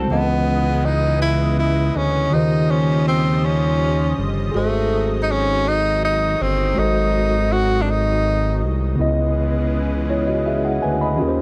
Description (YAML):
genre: slow six-eight R&B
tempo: 54 BPM (dotted quarters)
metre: 6/8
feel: straight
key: C# harmonic minor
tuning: A4 = 441 Hz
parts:
  - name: mellow tine electric piano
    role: accompaniment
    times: 0.0-11.4 s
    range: C#3 to B5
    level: -25 LUFS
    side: equal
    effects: none
  - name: lush unison pad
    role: sustained chords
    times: 0.0-11.4 s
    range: C#3 to D#5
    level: -31 LUFS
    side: equal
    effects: chorus
  - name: smooth synth bass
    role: bass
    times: 0.0-11.4 s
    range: G1 to D#2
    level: -23 LUFS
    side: equal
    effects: none
  - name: breathy tenor saxophone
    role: melody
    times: 0.1-8.7 s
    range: A3 to F#4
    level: -23 LUFS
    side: equal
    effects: none
room: light reverb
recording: dry, close 1970s-style studio recording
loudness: -19 LUFS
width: mono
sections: 0.1-11.4 A section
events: none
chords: 0.1 C#m9; 2.3 D#13; 4.5 G#7b9; 9.0 C#m9